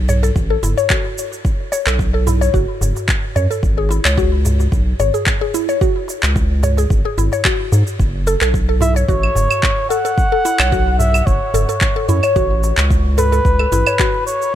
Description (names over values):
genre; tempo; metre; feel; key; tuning
organic downtempo; 110 BPM; 4/4; swing 53% on 16ths; F# minor; A4 = 442 Hz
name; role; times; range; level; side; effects
round analog bass; bass; 0.0-13.8 s; F#1 to G#2; -16 LUFS; equal; none
mallet-like synth pluck; arpeggios; 0.1-14.5 s; E4 to C#5; -20 LUFS; left 2 dB; chorus, phaser, ping-pong delay
electronic shaker, handclaps and claves; drums; 0.1-14.5 s; none; -21 LUFS; right 1 dB; none
darbuka; percussion; 0.1-14.2 s; none; -25 LUFS; left 1 dB; none
electronic kick drum; drums; 0.4-14.1 s; none; -18 LUFS; equal; none
trumpet with bucket mute; melody; 8.8-14.6 s; B4 to F#5; -18 LUFS; equal; vintage 12-bit sampler grit, ping-pong delay
room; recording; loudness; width
little or no reverb; none; -13 LUFS; side -11 dB against mid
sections
0.0-14.6 A section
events
none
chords
0.0 F#m; 3.6 G#7sus4; 8.0 F#m; 12.4 A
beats
0.36 0.90 | 1.45 2.00 2.54 3.09 | 3.63 4.18 4.72 5.27 | 5.81 6.36 6.90 7.45 | 8.00 8.54 9.09 9.63 | 10.18 10.72 11.27 11.81 | 12.36 12.90 13.45 13.99 | 14.54